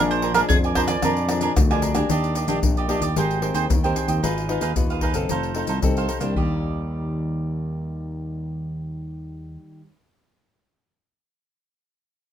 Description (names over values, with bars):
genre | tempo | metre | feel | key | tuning
samba and choro | 113 BPM | 4/4 | straight | Eb major | A4 = 443 Hz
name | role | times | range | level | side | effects
cavaquinho | accompaniment | 0.0-9.9 s | D4 to Ab5 | -26 LUFS | right 4 dB | none
nylon-string guitar | accompaniment | 0.0-9.9 s | F2 to Cb5 | -28 LUFS | left 3 dB | none
growling fingered electric bass | bass | 0.0-9.6 s | F1 to F2 | -26 LUFS | equal | overdrive
mandolin | melody | 0.1-1.8 s | Ab4 to D5 | -23 LUFS | right 5 dB | none
maracas, pandeiro, tamborim and surdo | percussion | 0.1-6.5 s | none | -24 LUFS | left 2 dB | none
room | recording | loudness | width
moderate studio ambience, RT60 0.5 s | minimal, uncompressed stereo recording | -20 LUFS | side -10 dB against mid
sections
0.0-2.1 A section; 2.1-6.4 B section; 6.4-10.6 C section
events
none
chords
0.0 Bb7; 2.1 Ebmaj7; 3.2 Abmaj9; 4.2 Abm6; 5.3 F7; 6.4 Ebmaj7